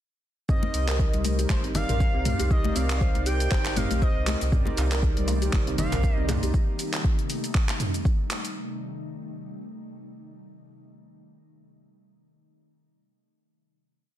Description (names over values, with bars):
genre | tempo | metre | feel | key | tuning
afro house | 119 BPM | 4/4 | swing 56% on 16ths | C dorian | A4 = 440 Hz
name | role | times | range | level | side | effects
expressive portamento lead | melody | 0.5-6.2 s | C5 to G5 | -34 LUFS | left 1 dB | chorus, tape echo
kalimba | arpeggios | 0.5-6.5 s | G3 to C5 | -34 LUFS | equal | vintage 12-bit sampler grit, sidechain pumping, tape echo
mellow synth brass | stabs | 0.5-6.5 s | Eb4 to Eb5 | -34 LUFS | right 5 dB | chorus, sidechain pumping, tape echo
deep house drum kit | drums | 0.5-8.5 s | handclaps, hi-hat, shaker, toms | -31 LUFS | right 1 dB | overdrive
electronic kick drum | drums | 0.5-8.2 s | none | -24 LUFS | equal | overdrive
congas | percussion | 0.6-6.5 s | none | -33 LUFS | left 7 dB | none
warm sub bass | bass | 0.7-6.5 s | G1 to C2 | -27 LUFS | equal | sidechain pumping
ethereal airy pad | sustained chords | 4.9-8.5 s | C3 to Eb4 | -35 LUFS | left 1 dB | ensemble chorus, built-in reverb, sidechain pumping
djembe | percussion | 4.7-6.4 s | none | -33 LUFS | equal | none
room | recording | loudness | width
little or no reverb | dense, heavily limited modern master | -23 LUFS | side -12 dB against mid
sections
0.5-8.6 drop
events
drop 0.5-8.6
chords
0.5 Cm7